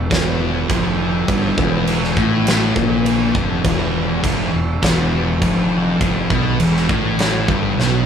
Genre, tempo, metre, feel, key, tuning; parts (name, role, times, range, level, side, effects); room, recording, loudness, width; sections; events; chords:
stoner and doom metal; 102 BPM; 4/4; straight; E phrygian; A4 = 440 Hz
string machine, cellos; sustained chords; 0.0-8.1 s; E3 to B4; -30 LUFS; right 1 dB
thick fuzz guitar; riff; 0.0-8.1 s; E2 to B2; -21 LUFS; left 8 dB; distortion
thick fuzz guitar; riff; 0.0-8.1 s; E2 to B2; -20 LUFS; right 5 dB; distortion
fuzz fingered electric bass; bass; 0.0-8.1 s; E1 to B1; -24 LUFS; equal; overdrive, tube saturation
big rock drum kit; drums; 0.1-7.9 s; crash cymbal, kick drum, snare drum; -20 LUFS; equal
light reverb; band playing live in one room; -15 LUFS; side -8 dB against mid
0.0-8.1 A section
drum fill 7.8
0.0 Em